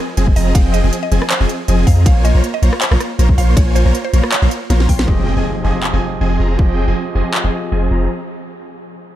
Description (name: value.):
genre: future bass.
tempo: 159 BPM.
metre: 4/4.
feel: swing 53% on 16ths, half-time.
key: F minor.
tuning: A4 = 444 Hz.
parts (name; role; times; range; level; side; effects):
supersaw chords; riff; 0.2-8.1 s; F3 to C6; -20 LUFS; equal; sidechain pumping, low-pass filter.
long sustained 808-style bass; bass; 0.2-8.1 s; F1 to F2; -14 LUFS; equal; sidechain pumping.
trap drum kit; drums; 0.2-7.4 s; handclaps, hi-hat, ride cymbal, rim click, snare drum; -22 LUFS; equal; studio reverb.
electronic kick drum; drums; 0.3-6.7 s; none; -13 LUFS; equal; studio reverb.
mallet-like synth pluck; melody; 0.4-5.0 s; C5 to G5; -26 LUFS; right 1 dB; chorus, sidechain pumping, dub echo.
overdriven tine electric piano; accompaniment; 5.1-8.1 s; F3 to Eb5; -26 LUFS; moving between left 3 dB and right 7 dB; auto-pan, sidechain pumping, dub echo.
impact; sound effects; 5.1-6.6 s; none; -27 LUFS; equal; none.
room: digital ambience.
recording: dark, warm production.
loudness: -12 LUFS.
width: side -13 dB against mid.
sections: 0.0-5.1 A section; 5.1-8.1 B section.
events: drop 0.0-5.1; drum fill 4.7-5.1; impact 5.1-6.6; filter sweep on supersaw synth 5.1-8.1.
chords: 0.0 Fm7; 2.1 Bbm7; 5.1 Fm7.